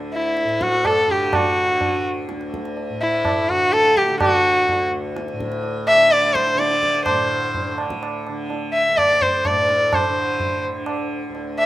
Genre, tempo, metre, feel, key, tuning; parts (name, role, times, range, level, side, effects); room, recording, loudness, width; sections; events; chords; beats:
indian classical, Hindustani; 126 BPM; 3/4; straight; D raga khamaj; A4 = 440 Hz
tanpura; drone; 0.0-11.7 s; D2 to D3; -27 LUFS; equal
rich sarangi; melody; 0.1-11.7 s; E4 to E5; -17 LUFS; equal
tabla; percussion; 0.4-11.7 s; -26 LUFS; right 3 dB
light reverb; rough home demo mix; -17 LUFS; side -15 dB against mid
0.0-7.1 A section; 7.1-11.7 B section
0.37 0.85 | 1.33 1.81 2.29 | 2.77 3.25 3.73 | 4.21 4.68 5.16 | 5.64 6.12 6.59 | 7.07 7.55 8.02 | 8.50 8.97 9.45 | 9.92 10.39 10.87 | 11.34